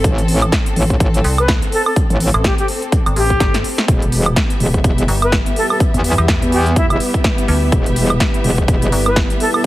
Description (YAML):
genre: bass house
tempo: 125 BPM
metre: 4/4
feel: swing 58% on 16ths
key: E minor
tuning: A4 = 440 Hz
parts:
  - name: metallic FM bass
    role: bass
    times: 0.0-9.3 s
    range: G1 to E2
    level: -17 LUFS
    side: equal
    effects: overdrive, sidechain pumping
  - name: metallic wobble bass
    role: bass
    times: 0.0-8.9 s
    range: E1 to E2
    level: -16 LUFS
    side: equal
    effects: chorus, tube saturation, sidechain pumping
  - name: big-room dance drum kit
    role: drums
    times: 0.0-9.6 s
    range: hi-hat, snare drum, woodblock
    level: -20 LUFS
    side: right 1 dB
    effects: none
  - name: electronic kick drum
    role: drums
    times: 0.0-9.3 s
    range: none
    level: -16 LUFS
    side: equal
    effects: none
  - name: rich symphonic string section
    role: texture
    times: 0.0-9.7 s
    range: B3 to E5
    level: -24 LUFS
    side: left 1 dB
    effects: sidechain pumping
  - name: silver concert flute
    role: melody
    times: 1.4-9.6 s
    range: E4 to B4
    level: -20 LUFS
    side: left 1 dB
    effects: tape echo
  - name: dark analog pad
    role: sustained chords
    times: 3.9-9.7 s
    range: G3 to B4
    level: -24 LUFS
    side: right 1 dB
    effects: chorus, sidechain pumping
room: light reverb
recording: heavily compressed radio sound, multiband compression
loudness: -13 LUFS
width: side -16 dB against mid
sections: 0.0-9.7 A section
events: drum fill 3.4-3.9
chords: 0.0 Am; 3.9 Em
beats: | 0.04 0.52 1.00 1.48 | 1.96 2.44 2.92 3.40 | 3.88 4.36 4.84 5.32 | 5.80 6.28 6.76 7.24 | 7.72 8.20 8.68 9.16 | 9.64